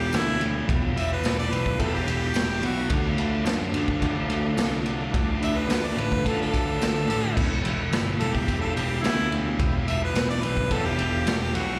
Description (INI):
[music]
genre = garage rock duo or trio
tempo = 108 BPM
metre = 4/4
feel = straight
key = E minor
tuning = A4 = 442 Hz
[part]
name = bright harmonica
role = melody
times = 0.0-11.8 s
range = E4 to E5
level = -32 LUFS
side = equal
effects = overdrive, analog delay
[part]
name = overdriven combo organ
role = sustained chords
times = 0.0-11.7 s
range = E4 to F#5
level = -41 LUFS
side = equal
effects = none
[part]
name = fuzz guitar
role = riff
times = 0.0-11.8 s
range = E2 to D4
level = -33 LUFS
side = equal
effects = distortion
[part]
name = picked electric bass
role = bass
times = 0.0-11.8 s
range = E1 to D3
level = -30 LUFS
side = equal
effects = none
[part]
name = raw garage drum kit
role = drums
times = 0.1-11.7 s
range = crash cymbal, kick drum, ride cymbal, snare drum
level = -29 LUFS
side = equal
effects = none
[part]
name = tambourine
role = percussion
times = 0.1-11.4 s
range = none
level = -46 LUFS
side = equal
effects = none
[sound]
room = small room ambience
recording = live gig heard through the venue's PA, recital hall reverb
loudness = -25 LUFS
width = mono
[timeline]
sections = 0.0-11.8 A section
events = none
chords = 0.0 Em; 2.9 D; 7.4 Em